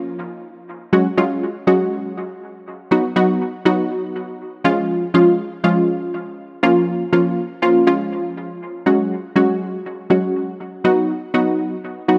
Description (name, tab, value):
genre	pop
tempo	121 BPM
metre	4/4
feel	straight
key	F# major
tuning	A4 = 441 Hz
part	punchy chord stab	solo	0.0-12.2 s	E#3 to F#4	-19 LUFS	equal	chorus, dub echo
room	light reverb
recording	none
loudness	-18 LUFS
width	mono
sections	0.0-8.9 A section; 8.9-12.2 B section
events	build-up 8.9-12.2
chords	0.0 A#m; 0.9 F#sus2; 2.9 B; 4.6 C#; 6.6 A#m; 7.9 C#; 8.9 F#sus2; 10.8 B